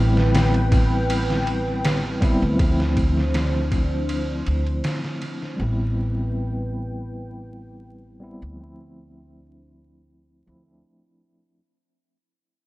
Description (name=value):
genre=trip hop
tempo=80 BPM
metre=4/4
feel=straight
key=unclear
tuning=A4 = 440 Hz
part: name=mellow tine electric piano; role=accompaniment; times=0.0-11.6 s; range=F3 to E4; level=-26 LUFS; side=equal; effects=tremolo, vintage 12-bit sampler grit, low-pass filter, tape echo
part: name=dark analog pad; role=sustained chords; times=0.0-11.6 s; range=D4 to G5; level=-30 LUFS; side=equal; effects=chorus, vintage 12-bit sampler grit
part: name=upright bass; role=bass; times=0.0-10.8 s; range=A1 to D2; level=-23 LUFS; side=equal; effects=none
part: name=trip hop sampler-style drum kit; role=drums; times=0.2-5.6 s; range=kick drum, ride cymbal, snare drum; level=-24 LUFS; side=equal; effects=vintage 12-bit sampler grit, analog delay
room=light reverb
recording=echo-heavy mix, vinyl crackle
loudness=-20 LUFS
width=side -18 dB against mid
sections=0.0-11.6 A section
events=fade-out 0.0-11.6; filter sweep on tine electric piano 0.0-11.6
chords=0.0 Am9; 2.6 Dm7; 5.6 Am9; 8.6 Dm7